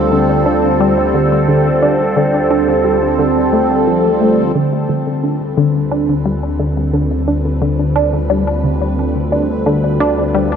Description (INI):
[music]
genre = ambient, sequencer-driven space music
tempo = 88 BPM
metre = 4/4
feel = straight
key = D dorian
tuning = A4 = 440 Hz
[part]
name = phased analog pad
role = sustained chords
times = 0.0-10.6 s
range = D3 to A4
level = -16 LUFS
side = right 1 dB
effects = phaser, chorus, shimmer reverb
[part]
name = analog drone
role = bass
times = 0.0-10.6 s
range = D2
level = -21 LUFS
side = equal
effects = chorus
[part]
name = tight sequenced synth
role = riff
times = 0.1-10.5 s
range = D3 to D4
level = -16 LUFS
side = left 1 dB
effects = chorus, ping-pong delay
[part]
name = bubbling stepped-filter texture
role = texture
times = 4.6-10.6 s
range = B4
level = -33 LUFS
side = right 2 dB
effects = chorus, built-in reverb, shimmer reverb
[sound]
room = wet cathedral reverb, RT60 5.8 s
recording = dreamy mix soaked in reverb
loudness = -12 LUFS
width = side -7 dB against mid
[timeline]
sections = 0.0-4.6 A section; 4.6-10.6 B section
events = filter sweep on synth arpeggio sound 0.0-4.6; fade-in on analog synth pad 4.6-10.6; fade-in on synth texture 4.6-10.6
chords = 0.0 Dm